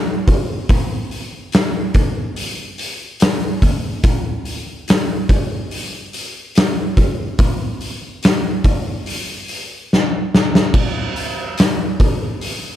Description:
metal; 72 BPM; 4/4; straight
oversized low-tuned drum kit; drums; 0.3-12.6 s; crash cymbal, hi-hat, kick drum, snare drum; -16 LUFS; equal
little or no reverb; -16 LUFS; side -12 dB against mid
0.0-12.8 A section
drum fill 9.9-10.7
| 0.69 1.53 2.37 3.20 | 4.04 4.88 5.71 6.55 | 7.39 8.23 9.06 9.90 | 10.74 11.58 12.41

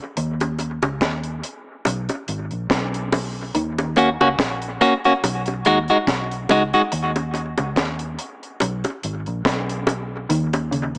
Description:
dub reggae; 71 BPM; 4/4; swing 56% on 16ths; A4 = 441 Hz
vintage muted fingered electric bass; bass; 0.2-11.0 s; Ab1 to Eb2; -29 LUFS; equal
deep reggae drum kit; drums; 0.2-11.0 s; hi-hat, kick drum, snare drum; -27 LUFS; equal
bongos; percussion; 0.4-10.7 s; -28 LUFS; equal; dub echo
mellow electric guitar; arpeggios; 3.5-3.7, 10.3-10.9 s; Db3 to Eb3; -28 LUFS; equal; subtle chorus, dub echo
clean electric guitar; accompaniment; 4.0-6.8 s; G#3 to Gb4; -20 LUFS; equal; dub echo
moderate spring reverb, RT60 2.9 s; small speaker sound; -22 LUFS; mono
0.0-11.0 A section
break 0.0-3.5, 6.9-11.0; part muted 10.3-11.0
0.2 N.C.; 1.9 Abm; 3.5 Ebm7; 5.2 B6; 6.9 N.C.; 8.6 Abm; 10.3 Eb5
| 0.17 1.01 1.85 2.70 | 3.54 4.39 5.23 6.08 | 6.92 7.76 8.61 9.45 | 10.29

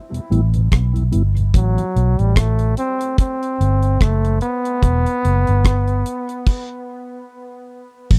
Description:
dub reggae; 73 BPM; 4/4; swing 57% on 16ths; A4 = 440 Hz
mellow tonewheel organ; accompaniment; 0.1-1.8 s; E2 to E4; -28 LUFS; equal; slow rotary speaker, low-pass filter, dub echo
deep reggae drum kit; drums; 0.1-8.2 s; crash cymbal, hi-hat, kick drum, rim click; -17 LUFS; equal
vintage muted fingered electric bass; bass; 0.3-8.2 s; E1 to B1; -18 LUFS; equal
clear trombone; melody; 1.6-7.2 s; F#3 to C4; -25 LUFS; equal; low-pass filter, dub echo
little or no reverb; dry, close 1970s-style studio recording; -18 LUFS; mono
0.0-8.1 A section
filter sweep 0.0-8.1; stop 6.5-8.1
0.0 Em; 1.5 Am; 4.8 Em
0.71 | 1.54 2.36 3.18 4.00 | 4.82 5.64 6.46 7.29 | 8.11

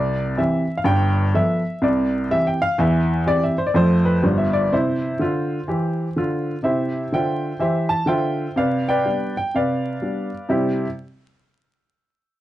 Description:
jazz, stride piano; 124 BPM; 4/4; swing 63% on 8ths; C major; A4 = 441 Hz
clear upright piano; solo; 0.0-10.9 s; G1 to A5; -18 LUFS; equal
moderate studio reverb, RT60 0.5 s; dark, warm production, vinyl crackle, nothing above 10.8 kHz; -18 LUFS; side -14 dB against mid
0.0-6.6 A section; 6.6-10.5 B section; 10.5-12.4 C section
0.0 C; 0.9 G9; 1.8 C; 2.8 C/E; 3.8 F; 4.2 G7; 4.7 C; 8.6 G7/C; 10.5 C
0.38 | 0.86 1.34 1.82 2.30 | 2.79 3.27 3.75 4.23 | 4.71 5.20 5.68 6.16 | 6.64 7.12 7.61 8.09 | 8.57 9.05 9.54 10.02 | 10.50

